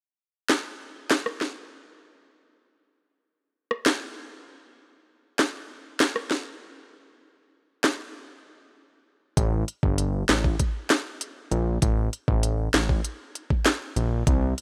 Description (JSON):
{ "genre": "dancehall", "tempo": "98 BPM", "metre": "4/4", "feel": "straight", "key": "unclear", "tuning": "A4 = 439 Hz", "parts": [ { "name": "island pop drum kit", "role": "drums", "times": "0.5-14.6 s", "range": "handclaps, hi-hat, kick drum, rim click, snare drum", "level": "-26 LUFS", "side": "equal", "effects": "overdrive" }, { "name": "fat analog bass", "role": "bass", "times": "9.4-14.5 s", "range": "G1 to C2", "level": "-27 LUFS", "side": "equal", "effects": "none" } ], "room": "little or no reverb", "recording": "none", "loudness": "-26 LUFS", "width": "mono", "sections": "0.0-9.4 A section; 9.4-14.6 B section", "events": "break 8.1-9.4", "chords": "none" }